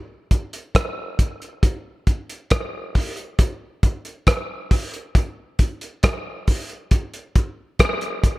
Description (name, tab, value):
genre	reggae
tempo	68 BPM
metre	4/4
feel	straight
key	none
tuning	none
part	cloth-damped thuddy drum kit	drums	0.3-8.4 s	hi-hat, kick drum, rim click	-19 LUFS	equal	none
room	light reverb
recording	none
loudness	-20 LUFS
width	side -20 dB against mid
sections	0.0-6.9 A section; 6.9-8.4 B section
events	none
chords	none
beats	0.75 1.63 2.51 | 3.39 4.27 5.15 6.03 | 6.91 7.79